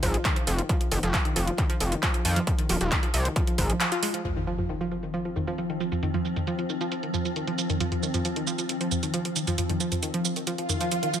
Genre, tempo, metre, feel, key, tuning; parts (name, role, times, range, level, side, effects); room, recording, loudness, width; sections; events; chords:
driving peak-time techno; 135 BPM; 4/4; straight; A4 = 440 Hz
analog pluck; riff; 0.0-11.2 s; Eb3 to F4; -30 LUFS; right 1 dB; chorus, sidechain pumping, ping-pong delay
gritty driven synth bass; bass; 0.0-3.7 s; Eb1 to F2; -26 LUFS; equal; sidechain pumping
electronic kick drum; drums; 0.0-3.7 s; -26 LUFS; equal; distortion, overdrive
techno drum kit; drums; 0.0-11.2 s; handclaps, hi-hat, shaker, toms; -29 LUFS; right 1 dB; overdrive, sidechain pumping on hats, low-pass filter on hats, low-pass filter on snare, sidechain pumping on toms, low-pass filter on toms, sidechain pumping on perc, low-pass filter on perc
swarming drone; drone; 5.0-11.2 s; F3 to C4; -32 LUFS; left 2 dB; built-in reverb, sidechain pumping
impact and swell; sound effects; 4.2-6.0, 10.6-11.2 s; -33 LUFS; equal
light reverb, digital ambience; -24 LUFS; side -9 dB against mid
0.0-4.2 A section; 4.2-11.2 B section
band accent 3.8; impact 4.2-6.0; filter sweep on drum 4.2-11.2; filter sweep on synth arpeggio sound 4.2-11.2; swell 10.6-11.2
0.0 Fm; 4.2 F5